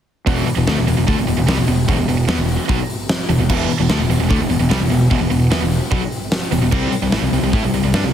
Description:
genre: hard rock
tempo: 149 BPM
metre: 4/4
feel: straight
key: E minor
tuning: A4 = 439 Hz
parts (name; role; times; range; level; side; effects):
- overdriven semi-hollow guitar; riff; 0.3-8.1 s; E2 to E4; -19 LUFS; left 6 dB; none
- tight distorted guitar; riff; 0.3-8.1 s; E2 to E4; -21 LUFS; right 10 dB; distortion
- fuzz fingered electric bass; bass; 0.3-8.1 s; E1 to A2; -20 LUFS; right 1 dB; overdrive
- huge arena drum kit; drums; 0.3-8.0 s; crash cymbal, hi-hat, kick drum, snare drum; -20 LUFS; equal; none
room: light reverb, small room reverb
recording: heavily compressed radio sound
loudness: -15 LUFS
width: side -9 dB against mid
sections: 0.3-8.1 A section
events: none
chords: 0.3 E5; 6.7 C5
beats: | 0.28 0.68 1.08 1.48 | 1.89 2.29 2.69 3.09 | 3.50 3.90 4.30 4.71 | 5.11 5.51 5.92 6.32 | 6.72 7.12 7.53 7.93

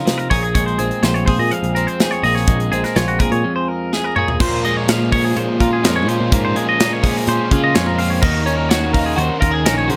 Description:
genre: math rock and midwest emo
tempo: 125 BPM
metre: 4/4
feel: straight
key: unclear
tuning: A4 = 440 Hz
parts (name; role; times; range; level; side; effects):
- twelve-string electric guitar; accompaniment; 0.0-10.0 s; F2 to Ab4; -23 LUFS; equal; none
- twangy electric guitar; arpeggios; 0.0-10.0 s; Gb4 to F5; -24 LUFS; equal; none
- modern studio drum kit; drums; 0.1-10.0 s; crash cymbal, hi-hat, kick drum, snare drum, toms; -21 LUFS; equal; none
- picked electric bass; bass; 0.3-10.0 s; Bb1 to Eb3; -23 LUFS; equal; none
- cranked stack guitar; riff; 4.4-10.0 s; Bb2 to Gb4; -26 LUFS; equal; overdrive
room: little or no reverb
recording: none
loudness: -17 LUFS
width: mono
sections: 0.0-4.4 A section; 4.4-10.0 B section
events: break 3.4-4.4; drum fill 3.9-4.4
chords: 0.3 Bbm9; 8.2 Ebm7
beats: 0.06 | 0.55 1.03 1.51 1.99 | 2.47 2.96 3.44 3.92 | 4.39 4.87 5.35 5.83 | 6.31 6.79 7.26 7.74 | 8.22 8.70 9.17 9.65

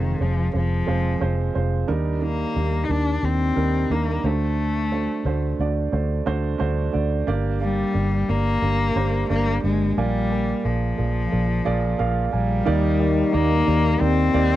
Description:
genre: piano-driven pop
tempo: 89 BPM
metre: 4/4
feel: swing 56% on 16ths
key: Eb major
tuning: A4 = 440 Hz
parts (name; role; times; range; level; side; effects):
- warm cello; melody; 0.0-14.6 s; Eb3 to Eb4; -24 LUFS; left 4 dB; none
- dark upright piano; accompaniment; 0.0-14.6 s; G2 to Ab5; -25 LUFS; right 6 dB; none
- vintage muted fingered electric bass; bass; 0.0-14.6 s; F1 to Eb2; -23 LUFS; equal; none
- dark French horn section; second line; 12.7-14.6 s; Eb3 to Eb4; -25 LUFS; left 5 dB; none
room: little or no reverb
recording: dry, close 1970s-style studio recording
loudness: -20 LUFS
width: side -14 dB against mid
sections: 0.0-12.7 A section; 12.7-14.6 B section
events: none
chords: 0.0 Fm; 1.9 Ebmaj7; 4.2 D7; 7.3 Gm; 10.0 Bb7; 12.7 Ebmaj7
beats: 0.54 1.21 | 1.89 2.56 3.23 3.91 | 4.58 5.25 5.93 6.60 | 7.28 7.95 8.62 9.30 | 9.97 10.64 11.32 11.99 | 12.66 13.34 14.01

